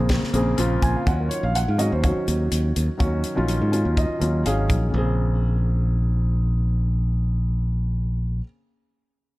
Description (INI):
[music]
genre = electric jazz fusion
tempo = 124 BPM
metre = 4/4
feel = straight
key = Bb minor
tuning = A4 = 440 Hz
[part]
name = dark grand piano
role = accompaniment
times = 0.0-8.4 s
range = Db3 to Ab5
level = -25 LUFS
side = equal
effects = none
[part]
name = modern bright fingered electric bass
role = bass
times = 0.0-8.4 s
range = Ab1 to Ab2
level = -21 LUFS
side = equal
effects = none
[part]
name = crisp fusion drum kit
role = drums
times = 0.1-4.8 s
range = hi-hat, kick drum, snare drum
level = -25 LUFS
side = equal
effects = none
[sound]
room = small room ambience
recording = none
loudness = -20 LUFS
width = side -19 dB against mid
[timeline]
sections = 0.0-4.9 A section; 4.9-8.8 B section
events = none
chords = 0.0 Bbm9; 1.1 Ebm9; 4.9 Bbm9